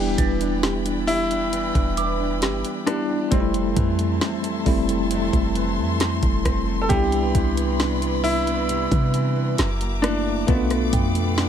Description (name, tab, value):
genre	contemporary R&B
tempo	67 BPM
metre	4/4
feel	straight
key	unclear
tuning	A4 = 444 Hz
part	bright baby grand piano	melody	0.0-11.5 s	B3 to A4	-27 LUFS	left 1 dB	digital delay
part	bell-like tine electric piano	accompaniment	0.0-11.5 s	G3 to F4	-25 LUFS	left 1 dB	fast stereo tremolo
part	rich studio string section	sustained chords	0.0-11.5 s	E4 to D6	-32 LUFS	left 3 dB	none
part	nylon-string guitar	arpeggios	0.0-11.5 s	F2 to G4	-30 LUFS	right 5 dB	none
part	clean 808-style bass	bass	0.0-11.5 s	E1 to C3	-25 LUFS	equal	none
part	smooth R&B drum kit	drums	0.2-11.5 s	hi-hat, kick drum, rim click, snare drum	-24 LUFS	equal	none
part	soft synth bell	texture	0.2-11.5 s	G5 to A6	-34 LUFS	right 3 dB	chorus, phaser, digital delay
room	little or no reverb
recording	none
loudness	-19 LUFS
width	side -9 dB against mid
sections	0.0-11.5 A section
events	none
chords	0.0 Em7; 3.3 Fmaj7; 6.9 Cmaj9; 9.6 F#7alt; 10.5 Bm7b5